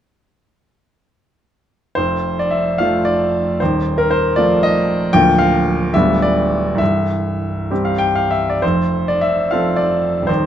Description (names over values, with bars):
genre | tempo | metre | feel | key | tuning
classical, romantic character piece for solo piano | 63-81 BPM (dotted quarters) | 6/8 | rubato | F major | A4 = 440 Hz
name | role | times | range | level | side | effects
clear baby grand piano | solo | 2.0-10.5 s | C1 to G5 | -14 LUFS | equal | none
room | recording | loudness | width
light reverb | dark, warm production | -14 LUFS | side -10 dB against mid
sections
2.0-10.5 A section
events
none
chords
2.0 F; 3.6 F7/Eb; 5.1 Bb/D; 5.9 G7/D; 6.8 C; 8.6 F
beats
| 1.97 2.79 | 3.60 4.37 | 5.13 5.94 | 6.80 7.70 | 8.62 9.49 | 10.28